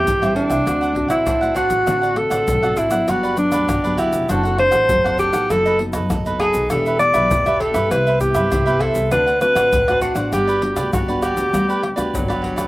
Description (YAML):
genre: samba and choro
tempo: 99 BPM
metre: 4/4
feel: straight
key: G major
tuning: A4 = 440 Hz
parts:
  - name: breathy alto saxophone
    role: melody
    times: 0.0-12.7 s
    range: F#3 to D5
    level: -17 LUFS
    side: equal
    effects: none
  - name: cavaquinho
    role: accompaniment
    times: 0.0-12.7 s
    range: D4 to G5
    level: -24 LUFS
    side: right 3 dB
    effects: slapback echo
  - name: nylon-string guitar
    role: accompaniment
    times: 0.0-12.7 s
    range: G2 to A4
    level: -26 LUFS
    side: left 2 dB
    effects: slapback echo
  - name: upright bass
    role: bass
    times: 0.0-12.7 s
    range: E1 to G2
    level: -26 LUFS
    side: equal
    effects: none
  - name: egg shaker, surdo, pandeiro and tamborim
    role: percussion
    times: 0.1-12.7 s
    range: none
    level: -26 LUFS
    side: left 1 dB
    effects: none
room: little or no reverb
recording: recorded outdoors, with no room sound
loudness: -15 LUFS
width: side -18 dB against mid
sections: 0.0-12.7 A section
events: none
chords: 0.0 Am7; 0.7 D7; 3.1 Gmaj7; 4.3 D7/F#; 5.5 B7/F#; 6.7 Em7; 7.9 Cmaj7; 9.1 D7; 10.3 Gmaj7